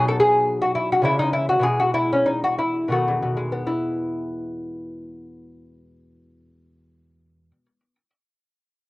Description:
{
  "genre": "classical, baroque-style dance for lute",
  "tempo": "78-112 BPM",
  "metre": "3/4",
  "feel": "rubato",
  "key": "E major",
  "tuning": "A4 = 440 Hz",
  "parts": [
    { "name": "lute", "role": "solo", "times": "0.0-8.1 s", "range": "E2 to A4", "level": "-19 LUFS", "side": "left 1 dB", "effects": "cassette tape" }
  ],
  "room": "light reverb, studio reverb",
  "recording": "home recording on cassette",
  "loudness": "-19 LUFS",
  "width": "side -20 dB against mid",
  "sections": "0.0-3.7 A section; 3.7-8.2 B section",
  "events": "slowing down 0.0-3.7",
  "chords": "0.0 B; 1.0 C#m; 1.6 E/B; 2.9 B7; 3.7 E"
}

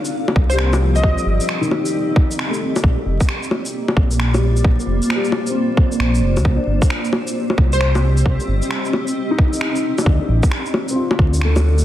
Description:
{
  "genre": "future garage",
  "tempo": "133 BPM",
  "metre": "4/4",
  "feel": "swing 64% on 16ths",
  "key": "C dorian",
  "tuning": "A4 = 444 Hz",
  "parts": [
    { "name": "dark upright piano", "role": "accompaniment", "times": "0.0-11.8 s", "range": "Eb3 to F4", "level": "-24 LUFS", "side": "left 3 dB", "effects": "sidechain pumping, low-pass filter, analog delay" },
    { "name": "granular cloud pad", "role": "sustained chords", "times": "0.0-11.8 s", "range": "Bb3 to F5", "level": "-23 LUFS", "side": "right 1 dB", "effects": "built-in reverb, sidechain pumping" },
    { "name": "electronic shaker, bongos and finger snaps", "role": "drums", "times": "0.1-11.8 s", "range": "none", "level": "-23 LUFS", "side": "left 1 dB", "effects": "overdrive, soft clipping on snare" },
    { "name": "dark detuned saw bass", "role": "bass", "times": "0.4-11.8 s", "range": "F1 to D2", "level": "-17 LUFS", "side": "equal", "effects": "sidechain pumping" },
    { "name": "electronic kick drum", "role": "drums", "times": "0.4-11.3 s", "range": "none", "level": "-16 LUFS", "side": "equal", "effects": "overdrive" },
    { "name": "plucky unison lead", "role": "melody", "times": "0.5-1.6, 7.7-8.0 s", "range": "C5 to Eb5", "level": "-24 LUFS", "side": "left 1 dB", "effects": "analog chorus, tape echo" }
  ],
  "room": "moderate lush hall reverb, RT60 1.8 s",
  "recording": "dense, heavily limited modern master, vinyl crackle",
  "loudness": "-15 LUFS",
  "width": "side -12 dB against mid",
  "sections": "0.0-11.8 A section",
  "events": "filter sweep on upright piano 0.0-11.8",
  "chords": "0.0 Cm7; 2.8 Bbadd9; 6.5 Cm7; 10.1 Dm"
}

